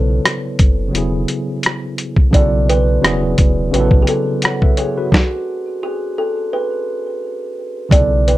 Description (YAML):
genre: lo-fi hip hop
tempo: 86 BPM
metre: 4/4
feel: swing 56% on 16ths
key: unclear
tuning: A4 = 440 Hz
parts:
  - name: kalimba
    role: melody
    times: 0.0-8.4 s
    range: F#4 to D5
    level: -20 LUFS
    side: right 2 dB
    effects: low-pass filter
  - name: tine electric piano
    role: accompaniment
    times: 0.0-8.4 s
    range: C#3 to F#5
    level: -20 LUFS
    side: equal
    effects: overdrive, fast stereo tremolo, cassette tape, low-pass filter
  - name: sub bass with octave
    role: bass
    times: 0.0-8.4 s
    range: E1 to B1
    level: -18 LUFS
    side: equal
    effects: none
  - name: lo-fi sampler-style drum kit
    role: drums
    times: 0.3-8.4 s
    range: hi-hat, kick drum, rim click, snare drum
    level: -13 LUFS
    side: equal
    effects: none
room: light reverb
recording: none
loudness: -14 LUFS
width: side -16 dB against mid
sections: 0.0-7.9 A section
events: stop 5.1-7.9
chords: 0.0 Bsus2; 0.9 E69; 2.3 Bm9; 3.0 E69; 3.7 Aadd9; 5.1 N.C.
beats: 0.23 0.93 1.63 | 2.33 3.02 3.72 4.42 | 5.12 5.82 6.51 7.21 | 7.91